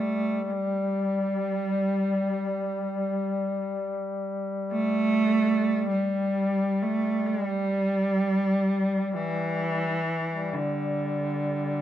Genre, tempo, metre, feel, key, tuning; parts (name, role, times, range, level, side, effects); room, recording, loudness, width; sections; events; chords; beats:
caucasian folk, Caucasian lament; free time; A4 = 439 Hz
warm cello; melody; 0.0-11.8 s; D3 to A3; -26 LUFS; right 2 dB
mellow duduk; drone; 0.0-11.8 s; G3; -30 LUFS; left 4 dB
light reverb, studio reverb; rough home demo mix; -24 LUFS; side -11 dB against mid
0.0-11.8 A section
free time